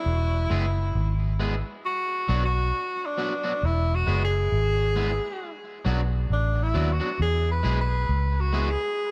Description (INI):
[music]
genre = roots reggae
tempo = 67 BPM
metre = 4/4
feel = swing 57% on 16ths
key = E mixolydian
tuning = A4 = 439 Hz
[part]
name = clear tenor saxophone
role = melody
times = 0.0-9.1 s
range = D4 to B4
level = -30 LUFS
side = equal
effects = tape echo
[part]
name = vintage muted fingered electric bass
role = bass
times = 0.1-8.8 s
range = E1 to E2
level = -26 LUFS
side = equal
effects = none
[part]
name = electric guitar at the edge of break-up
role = accompaniment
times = 0.5-8.7 s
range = F#3 to G#4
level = -36 LUFS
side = equal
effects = spring reverb, tape echo
[sound]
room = light reverb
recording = none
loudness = -25 LUFS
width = mono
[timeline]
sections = 0.0-9.1 A section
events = tenor saxophone solo 0.0-9.1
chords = 0.1 E; 1.8 Bm; 3.6 E; 5.4 Bm; 7.2 E